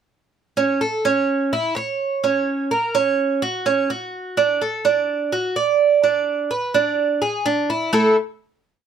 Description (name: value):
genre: latin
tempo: 126 BPM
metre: 4/4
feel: straight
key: A major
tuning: A4 = 439 Hz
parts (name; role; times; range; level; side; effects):
- Cuban tres; solo; 0.6-8.2 s; A3 to D5; -18 LUFS; right 4 dB; none
room: light reverb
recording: close, detailed microphones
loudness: -18 LUFS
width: side -8 dB against mid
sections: 0.3-7.9 A section; 7.9-8.9 final chord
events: none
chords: 0.3 A; 2.2 F#; 4.1 D; 6.0 E7 (rootless); 7.9 A5